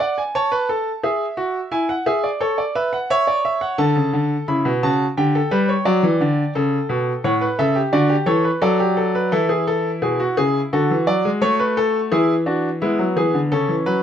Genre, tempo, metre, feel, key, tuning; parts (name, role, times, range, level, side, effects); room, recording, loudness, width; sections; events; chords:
classical, baroque-style 3-part fugue for grand piano; 87 BPM; 4/4; straight; A4 = 440 Hz
clear baby grand piano; solo; 0.0-14.0 s; A2 to B5; -17 LUFS; equal
little or no reverb; close, detailed microphones; -17 LUFS; side -9 dB against mid
0.0-14.0 A section
0.0 Bm7; 1.0 E7; 2.4 A; 3.8 D; 5.2 Em7/D; 6.6 A7; 7.9 D; 9.3 A/E; 10.7 Bm7/D; 12.1 E7; 13.5 A/C#